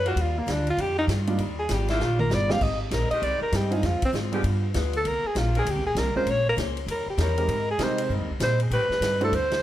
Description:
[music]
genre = jazz, big band swing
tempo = 196 BPM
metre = 4/4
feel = swing 62% on 8ths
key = unclear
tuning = A4 = 440 Hz
[part]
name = warm alto saxophone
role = melody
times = 0.0-9.6 s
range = Bb3 to F5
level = -26 LUFS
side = equal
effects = none
[part]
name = picked acoustic archtop guitar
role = accompaniment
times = 0.0-9.5 s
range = Ab2 to C5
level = -35 LUFS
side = left 5 dB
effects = none
[part]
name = clear saxophone section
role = sustained chords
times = 0.0-8.8 s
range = Eb3 to Bb4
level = -35 LUFS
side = equal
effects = none
[part]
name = upright bass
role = bass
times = 0.0-9.6 s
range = G1 to C3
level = -26 LUFS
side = equal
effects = none
[part]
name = vintage drum kit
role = drums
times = 0.1-9.6 s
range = crash cymbal, hi-hat, kick drum, ride cymbal, snare drum, toms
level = -32 LUFS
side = equal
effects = none
[part]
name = warm baby grand piano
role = accompaniment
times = 1.3-9.3 s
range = G3 to C5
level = -30 LUFS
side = right 3 dB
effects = none
[sound]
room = light reverb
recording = none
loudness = -22 LUFS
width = side -13 dB against mid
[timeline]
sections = 0.0-2.6 A section; 2.6-9.6 A section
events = alto saxophone solo 0.0-9.6; drum fill 2.0-2.6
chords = 0.2 Ebmaj9; 2.6 Abmaj7; 3.8 Dm7b5; 4.4 G7b9; 5.0 Cm9; 6.3 Bbm9; 6.9 Eb7b9; 7.5 Abmaj7; 8.7 Am7b5

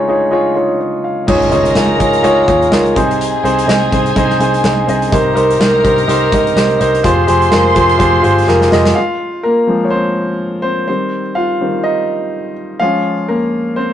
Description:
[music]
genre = piano-driven pop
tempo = 125 BPM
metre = 4/4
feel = swing 56% on 16ths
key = unclear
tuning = A4 = 441 Hz
[part]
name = warm concert grand piano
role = accompaniment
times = 0.0-13.9 s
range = Db2 to F5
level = -12 LUFS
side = equal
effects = none
[part]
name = dark studio violin section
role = second line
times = 1.3-8.9 s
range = Ab4 to C6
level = -19 LUFS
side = right 1 dB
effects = none
[part]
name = vintage muted picked electric bass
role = bass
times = 1.3-8.9 s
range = F1 to Eb2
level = -18 LUFS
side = equal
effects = none
[part]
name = modern studio drum kit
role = drums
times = 1.3-9.0 s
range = crash cymbal, hi-hat, kick drum, snare drum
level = -18 LUFS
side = equal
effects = none
[part]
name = impact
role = sound effects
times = 1.3-3.2 s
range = none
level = -24 LUFS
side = right 1 dB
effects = none
[sound]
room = light reverb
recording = rough rehearsal-room recording, nothing above 10.4 kHz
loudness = -11 LUFS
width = side -10 dB against mid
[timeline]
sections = 0.0-1.3 A section; 1.3-9.0 B section; 9.0-13.9 C section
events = impact 1.3-3.2; drum fill 8.5-9.0; grand piano solo 9.0-13.9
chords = 0.0 Dbadd9; 3.0 Ab/C; 5.1 Cm7; 7.0 Fmadd9; 9.0 Fm; 10.9 Cm; 12.8 Db

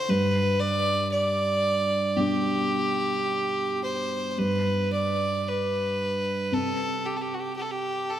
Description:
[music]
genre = celtic folk, Celtic slow air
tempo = 53-60 BPM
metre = 4/4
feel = rubato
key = G major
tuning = A4 = 440 Hz
[part]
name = clear fiddle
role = melody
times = 0.0-8.2 s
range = F#4 to D5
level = -26 LUFS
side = equal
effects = none
[part]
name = dark upright piano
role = accompaniment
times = 0.0-8.2 s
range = G2 to D4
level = -28 LUFS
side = right 1 dB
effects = none
[sound]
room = wet church reverb, RT60 3.1 s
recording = none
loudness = -24 LUFS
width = side -11 dB against mid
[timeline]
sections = 0.0-4.4 A section; 4.4-8.2 A section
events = none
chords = 0.1 G; 4.4 N.C.

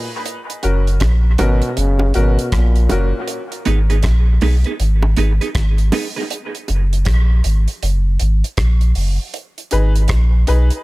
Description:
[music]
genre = dub reggae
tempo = 79 BPM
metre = 4/4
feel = swing 63% on 16ths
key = unclear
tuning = A4 = 439 Hz
[part]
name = dark trombone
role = melody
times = 0.0-3.1 s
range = A#2 to C#3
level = -24 LUFS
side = equal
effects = dub echo
[part]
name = bright upright piano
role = stabs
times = 0.0-3.1, 9.7-10.7 s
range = C#4 to B4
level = -24 LUFS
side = left 3 dB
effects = high-pass filter, dub echo
[part]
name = damped 70s drum kit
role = drums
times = 0.3-10.8 s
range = hi-hat, kick drum, rim click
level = -24 LUFS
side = right 1 dB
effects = none
[part]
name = warm sub bass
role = bass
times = 0.6-10.7 s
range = F#1 to B1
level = -14 LUFS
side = equal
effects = none
[part]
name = bongos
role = percussion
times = 0.6-6.9 s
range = none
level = -27 LUFS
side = right 2 dB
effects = high-pass filter on perc, dub echo
[part]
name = semi-hollow electric guitar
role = accompaniment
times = 3.7-6.2 s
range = B3 to B4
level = -23 LUFS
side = right 5 dB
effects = high-pass filter, dub echo
[sound]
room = small room ambience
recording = echo-heavy mix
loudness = -14 LUFS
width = side -20 dB against mid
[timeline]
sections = 0.0-10.8 A section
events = break 0.0-3.3; part muted 6.3-10.8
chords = 0.3 F#; 3.3 G#m; 6.3 F#; 9.3 G#m

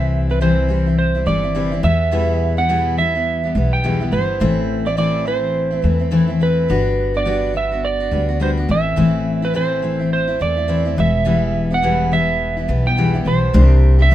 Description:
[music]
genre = pop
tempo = 105 BPM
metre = 4/4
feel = swing 60% on 16ths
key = unclear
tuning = A4 = 440 Hz
[part]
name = electric slide guitar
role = melody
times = 0.0-14.1 s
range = B4 to G5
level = -20 LUFS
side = right 4 dB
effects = none
[part]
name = picked steel-string acoustic guitar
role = accompaniment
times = 0.0-14.1 s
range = E2 to G4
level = -19 LUFS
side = left 3 dB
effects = none
[part]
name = upright bass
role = bass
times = 0.0-14.1 s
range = E1 to E2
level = -19 LUFS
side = equal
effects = none
[sound]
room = light reverb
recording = minimal, uncompressed stereo recording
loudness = -15 LUFS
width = side -12 dB against mid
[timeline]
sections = 0.0-14.1 A section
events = none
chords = 0.0 C; 1.8 Em; 4.4 Am; 6.7 Gmaj7; 8.7 Am; 11.0 Em; 13.5 Csus2

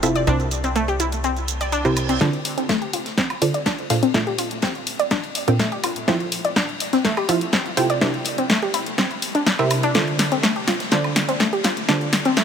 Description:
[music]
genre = progressive house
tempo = 124 BPM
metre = 4/4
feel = straight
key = unclear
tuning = A4 = 440 Hz
[part]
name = wide unison pluck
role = stabs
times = 0.0-12.4 s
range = Bb2 to G5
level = -24 LUFS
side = right 2 dB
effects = cassette tape, sidechain pumping, dub echo
[part]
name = tight sequencer bass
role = bass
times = 0.0-2.2 s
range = F1 to C2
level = -26 LUFS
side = left 1 dB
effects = sidechain pumping
[part]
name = deep house drum kit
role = drums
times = 0.0-12.4 s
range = hi-hat, shaker, snare drum, woodblock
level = -23 LUFS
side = left 1 dB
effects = sidechain pumping on hats, sidechain pumping on perc
[part]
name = glassy wavetable pluck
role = arpeggios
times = 0.2-12.4 s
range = A3 to D5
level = -23 LUFS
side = left 1 dB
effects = chorus, sidechain pumping, dub echo
[part]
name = reverse cymbal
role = sound effects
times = 1.5-2.2 s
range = none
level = -34 LUFS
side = right 5 dB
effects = none
[part]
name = electronic kick drum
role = drums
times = 2.2-12.4 s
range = none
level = -29 LUFS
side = left 1 dB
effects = high-pass filter on kick, high-pass filter on room
[part]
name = loose indie drum kit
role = drums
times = 2.2-12.4 s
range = ride cymbal, snare drum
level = -32 LUFS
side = left 4 dB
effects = high-pass filter on cymbals, high-pass filter on snare, high-pass filter on room
[sound]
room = moderate huge ambient reverb, RT60 4.8 s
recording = high-pass filter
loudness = -18 LUFS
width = side -7 dB against mid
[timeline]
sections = 0.0-2.2 A section; 2.2-12.4 B section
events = reverse cymbal 1.5-2.2; build-up 2.2-12.4; drum fill 2.2-12.4; filter sweep on synth arpeggio sound 2.2-12.4; filter sweep on synth pluck 2.2-12.4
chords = 0.3 C7; 2.2 Bbmaj7; 6.1 Fmaj7; 8.0 C7; 9.9 Dm7

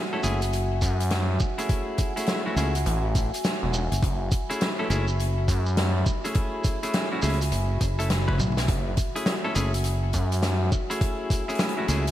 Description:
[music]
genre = glitch hop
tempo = 103 BPM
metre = 4/4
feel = swing 64% on 16ths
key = F# minor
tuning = A4 = 440 Hz
[part]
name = dark analog pad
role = sustained chords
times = 0.0-12.1 s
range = F#4 to B5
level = -32 LUFS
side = left 1 dB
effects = chorus, sidechain pumping
[part]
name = semi-hollow electric guitar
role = stabs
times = 0.1-12.0 s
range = A3 to B4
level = -32 LUFS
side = equal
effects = vintage 12-bit sampler grit, sidechain pumping, ping-pong delay
[part]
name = fingered electric bass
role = bass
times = 0.2-12.1 s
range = F#1 to C#2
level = -25 LUFS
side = equal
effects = none
[part]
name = huge arena drum kit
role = drums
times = 0.2-12.1 s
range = hi-hat, snare drum, toms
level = -30 LUFS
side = equal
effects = gated reverb
[part]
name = shekere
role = percussion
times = 0.2-12.1 s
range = none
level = -37 LUFS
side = right 2 dB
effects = none
[part]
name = gritty driven synth bass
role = bass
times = 0.8-10.7 s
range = E1 to F#2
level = -25 LUFS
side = equal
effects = none
[part]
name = electronic kick drum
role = drums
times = 0.8-11.5 s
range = none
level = -25 LUFS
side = equal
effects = overdrive
[sound]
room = light reverb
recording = bright 1980s-style digital production, vinyl crackle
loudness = -23 LUFS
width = side -13 dB against mid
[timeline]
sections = 0.0-12.1 A section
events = drum fill 8.2-8.7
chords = 0.0 F#m9

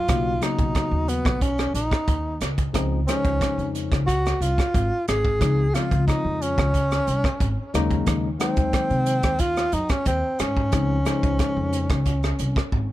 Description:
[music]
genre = electric jazz fusion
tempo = 90 BPM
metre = 4/4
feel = straight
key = Db major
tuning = A4 = 440 Hz
[part]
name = breathy tenor saxophone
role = melody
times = 0.0-12.7 s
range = Cb4 to Ab4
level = -25 LUFS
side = equal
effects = none
[part]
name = upright bass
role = bass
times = 0.0-12.9 s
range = Ab1 to C3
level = -25 LUFS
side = equal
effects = none
[part]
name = bright tine electric piano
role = accompaniment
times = 0.1-12.0 s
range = Db3 to C5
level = -27 LUFS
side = left 4 dB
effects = lush chorus
[part]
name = crisp fusion drum kit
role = drums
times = 0.1-12.9 s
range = hi-hat, kick drum, rim click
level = -25 LUFS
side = equal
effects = none
[sound]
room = little or no reverb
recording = none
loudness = -20 LUFS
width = side -15 dB against mid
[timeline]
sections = 0.0-12.9 A section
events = drum fill 12.7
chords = 0.0 Cbmaj7; 2.8 Dbmaj7; 7.7 Ab9sus4/Eb; 10.7 Dbmaj7

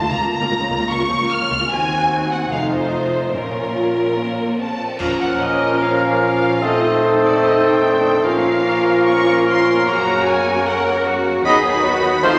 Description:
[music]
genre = classical, dramatic, fast romantic movement for symphony orchestra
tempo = 149 BPM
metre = 4/4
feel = rubato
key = Bb minor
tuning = A4 = 440 Hz
[part]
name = clear symphonic violin section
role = melody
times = 0.0-12.4 s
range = Bb4 to F6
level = -25 LUFS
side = equal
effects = none
[part]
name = rich symphonic viola section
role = accompaniment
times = 0.0-12.4 s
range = D#3 to Gb4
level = -30 LUFS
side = equal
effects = none
[part]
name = mellow French horn section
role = sustained chords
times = 0.0-12.4 s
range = A3 to A4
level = -25 LUFS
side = equal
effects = none
[part]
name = rich symphonic cello section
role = bass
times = 0.0-12.4 s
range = Db2 to Bb4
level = -27 LUFS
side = equal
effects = none
[part]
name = rich symphonic violin section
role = second line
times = 0.1-12.4 s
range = F4 to F6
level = -29 LUFS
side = equal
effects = none
[part]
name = clear studio double bass section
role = bass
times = 0.1-12.4 s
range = F1 to Gb2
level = -33 LUFS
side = equal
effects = none
[part]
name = cymbal swell, clash cymbals and concert bass drum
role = percussion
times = 1.7-5.8 s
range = none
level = -36 LUFS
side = equal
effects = none
[part]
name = clear oboe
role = second line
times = 5.0-12.3 s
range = A4 to D#5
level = -28 LUFS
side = equal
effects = none
[part]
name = silver concert flute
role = second line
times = 5.0-12.3 s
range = Db6 to F6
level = -30 LUFS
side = equal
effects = none
[part]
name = warm clarinet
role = second line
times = 5.0-12.3 s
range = A3 to Db4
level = -30 LUFS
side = equal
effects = none
[part]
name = mellow bassoon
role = accompaniment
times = 5.0-12.3 s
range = F3 to A3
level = -22 LUFS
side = equal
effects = none
[part]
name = clear trombone section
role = sustained chords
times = 5.0-12.4 s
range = Bb2 to Bb3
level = -28 LUFS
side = equal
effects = none
[part]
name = warm trumpet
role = stabs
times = 5.0-12.4 s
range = Bb4 to D#5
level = -25 LUFS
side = equal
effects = none
[sound]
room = wet scoring stage reverb, RT60 1.8 s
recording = none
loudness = -17 LUFS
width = mono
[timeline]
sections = 0.0-5.0 A section; 5.0-12.4 B section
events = band accent 5.0-5.4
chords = 0.1 Bbm/Db; 1.7 Cdim/Eb; 2.5 F7; 3.3 Bbm; 6.6 Adim/Bb; 8.2 Bbm; 9.9 Gb; 11.5 B/D#

